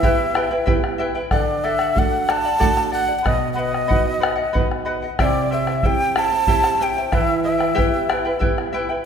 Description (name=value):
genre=andean folk, Andean ensemble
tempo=93 BPM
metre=3/4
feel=straight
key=E minor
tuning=A4 = 443 Hz
part: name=breathy quena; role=melody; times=0.0-8.4 s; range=D5 to A5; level=-21 LUFS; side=equal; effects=none
part: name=charango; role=accompaniment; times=0.0-9.1 s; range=E4 to G5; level=-24 LUFS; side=left 2 dB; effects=none
part: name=nylon-string guitar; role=accompaniment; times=0.0-8.9 s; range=B2 to G4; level=-25 LUFS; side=right 5 dB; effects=none
part: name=bombo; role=percussion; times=0.0-8.7 s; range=none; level=-22 LUFS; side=equal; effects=none
room=moderate scoring stage reverb, RT60 1.7 s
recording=recorded in a church or concert hall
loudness=-17 LUFS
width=side -7 dB against mid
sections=0.0-9.1 A section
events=none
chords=0.0 Em; 1.3 D; 3.3 B; 5.2 C; 7.1 Em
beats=0.03 0.68 | 1.32 1.96 2.61 | 3.25 3.90 4.54 | 5.19 5.83 6.48 | 7.12 7.77 8.42